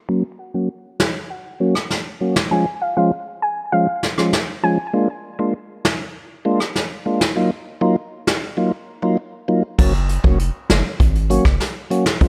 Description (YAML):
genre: dancehall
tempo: 99 BPM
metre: 4/4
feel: straight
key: unclear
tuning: A4 = 440 Hz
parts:
  - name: hollow square pluck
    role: melody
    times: 0.1-4.8 s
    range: F5 to Bb5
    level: -25 LUFS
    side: equal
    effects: chorus, low-pass filter, delay
  - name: tonewheel organ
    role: accompaniment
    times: 0.1-12.3 s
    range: F3 to Gb4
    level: -21 LUFS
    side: equal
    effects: overdrive, slow rotary speaker, low-pass filter
  - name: vintage brush drum kit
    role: drums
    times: 1.0-12.3 s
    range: crash cymbal, hi-hat, kick drum, rim click, snare drum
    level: -21 LUFS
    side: equal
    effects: none
  - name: hard-hitting 808-style bass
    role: bass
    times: 9.8-12.3 s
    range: F1 to Db2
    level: -21 LUFS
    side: equal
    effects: none
room: little or no reverb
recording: none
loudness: -20 LUFS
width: mono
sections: 0.1-9.8 A section; 9.8-12.3 B section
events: filter sweep 0.1-9.8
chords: 0.1 Gb; 2.5 Db; 4.9 Bb7; 7.4 Ebmadd9; 9.8 Gb